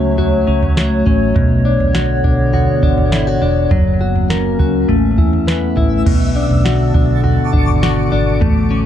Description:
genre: dream pop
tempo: 102 BPM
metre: 4/4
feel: straight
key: B dorian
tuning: A4 = 440 Hz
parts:
  - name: warbly tape-like pad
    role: sustained chords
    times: 0.0-8.9 s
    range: D3 to C#5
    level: -18 LUFS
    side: equal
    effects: chorus, built-in reverb
  - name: direct-recorded clean electric guitar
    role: arpeggios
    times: 0.0-8.9 s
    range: B2 to B4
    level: -17 LUFS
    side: left 3 dB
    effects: wide subtle chorus, ping-pong delay
  - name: vintage muted fingered electric bass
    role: bass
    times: 0.0-8.9 s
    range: E1 to E2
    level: -18 LUFS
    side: equal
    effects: none
  - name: soft vintage rhythm box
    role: drums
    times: 0.2-8.6 s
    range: crash cymbal, kick drum, snare drum, toms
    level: -17 LUFS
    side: right 1 dB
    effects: none
  - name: twinkling granular texture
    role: texture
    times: 5.9-8.4 s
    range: E5 to D6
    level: -26 LUFS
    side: left 1 dB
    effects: built-in reverb, ping-pong delay
room: light reverb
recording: dark, warm production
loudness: -12 LUFS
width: side -10 dB against mid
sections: 0.0-6.1 A section; 6.1-8.9 A section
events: none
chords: 0.0 F#m; 1.4 Bmadd9; 3.7 F#; 4.9 Aadd9; 6.1 Bmadd9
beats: 0.18 0.77 | 1.36 1.95 2.54 3.12 | 3.71 4.30 4.89 5.48 | 6.06 6.65 7.24 7.83 | 8.42

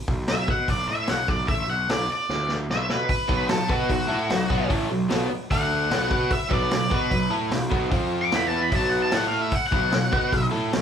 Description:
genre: blues rock power trio and southern rock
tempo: 149 BPM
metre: 4/4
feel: straight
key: B minor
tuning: A4 = 442 Hz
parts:
  - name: fuzz picked electric bass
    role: bass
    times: 0.1-10.8 s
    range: A1 to B2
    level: -30 LUFS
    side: right 1 dB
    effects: overdrive
  - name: vintage drum kit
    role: drums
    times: 0.1-10.8 s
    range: hi-hat, kick drum, snare drum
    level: -26 LUFS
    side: equal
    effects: none
  - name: octave-fuzz lead guitar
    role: melody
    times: 0.3-10.4 s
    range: F#4 to D6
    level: -25 LUFS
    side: left 1 dB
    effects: distortion
  - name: overdriven semi-hollow guitar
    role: riff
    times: 3.3-10.8 s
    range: A2 to B4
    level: -25 LUFS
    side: equal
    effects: none
room: light reverb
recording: band playing live in one room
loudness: -21 LUFS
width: side -8 dB against mid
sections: 0.0-10.8 A section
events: drum fill 2.3-3.1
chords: 0.0 D69; 2.3 N.C.; 2.7 B5; 5.5 D5; 5.9 B5; 7.9 F5; 8.3 E5; 8.7 B5; 9.1 A5; 9.7 B5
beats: 0.29 0.69 1.09 | 1.49 1.89 2.30 2.70 | 3.10 3.50 3.90 4.31 | 4.71 5.11 5.51 5.92 | 6.32 6.72 7.12 7.53 | 7.93 8.33 8.73 9.13 | 9.53 9.93 10.33 10.73

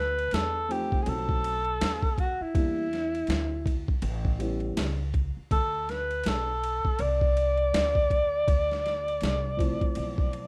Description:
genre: hip hop, jazz-hop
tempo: 81 BPM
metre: 4/4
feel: swing 60% on 16ths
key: D dorian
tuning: A4 = 440 Hz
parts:
  - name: breathy alto saxophone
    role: melody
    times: 0.0-10.5 s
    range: E4 to D5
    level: -30 LUFS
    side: equal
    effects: plate reverb
  - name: upright bass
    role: bass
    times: 0.0-10.5 s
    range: A1 to E2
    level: -35 LUFS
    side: equal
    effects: none
  - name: boom bap sampler-style drum kit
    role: drums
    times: 0.2-10.5 s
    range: hi-hat, kick drum, ride cymbal, snare drum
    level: -32 LUFS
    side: equal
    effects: none
  - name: dark concert grand piano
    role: accompaniment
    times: 0.7-4.9, 9.6-10.5 s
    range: F3 to E4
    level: -36 LUFS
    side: equal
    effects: plate reverb
room: moderate studio reverb, RT60 0.6 s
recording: rough home demo mix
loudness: -28 LUFS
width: mono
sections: 0.0-10.5 A section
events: none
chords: 0.0 Dm9; 1.1 B7b9; 2.6 Em7b5; 4.0 A7; 5.5 Dm9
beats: 0.33 1.07 1.81 | 2.55 3.29 4.03 4.77 | 5.51 6.25 7.00 7.74 | 8.48 9.22 9.96

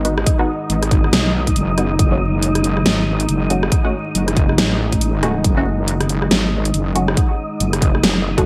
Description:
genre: deep dubstep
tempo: 139 BPM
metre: 4/4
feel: swing 59% on 16ths, half-time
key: unclear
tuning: A4 = 441 Hz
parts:
  - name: deep dark ambient pad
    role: sustained chords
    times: 0.0-8.5 s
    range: G#3 to D#4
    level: -28 LUFS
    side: equal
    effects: chorus, built-in reverb
  - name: filtered dub chord stab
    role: stabs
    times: 0.0-8.5 s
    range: A3 to F#4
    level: -26 LUFS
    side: equal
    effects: phaser, lush chorus, dub echo
  - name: wobble bass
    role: bass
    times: 0.0-8.5 s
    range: F#1 to B1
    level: -21 LUFS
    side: equal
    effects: chorus
  - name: dubstep drum kit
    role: drums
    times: 0.0-8.4 s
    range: hi-hat, rim click, snare drum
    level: -22 LUFS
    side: equal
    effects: gated reverb
  - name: wind-like tuned noise texture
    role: texture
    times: 0.0-8.5 s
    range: D#4 to D#5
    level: -30 LUFS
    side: equal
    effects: built-in reverb, ensemble chorus
  - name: electronic kick drum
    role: drums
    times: 0.3-8.4 s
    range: none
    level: -19 LUFS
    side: equal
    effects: none
room: light reverb, digital ambience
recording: bright 1980s-style digital production, vinyl crackle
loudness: -17 LUFS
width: mono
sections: 0.0-8.5 A section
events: none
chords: 0.0 G#m7; 2.0 F#m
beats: | 0.27 0.70 1.13 1.56 | 1.99 2.42 2.86 3.29 | 3.72 4.15 4.58 5.01 | 5.45 5.88 6.31 6.74 | 7.17 7.60 8.04

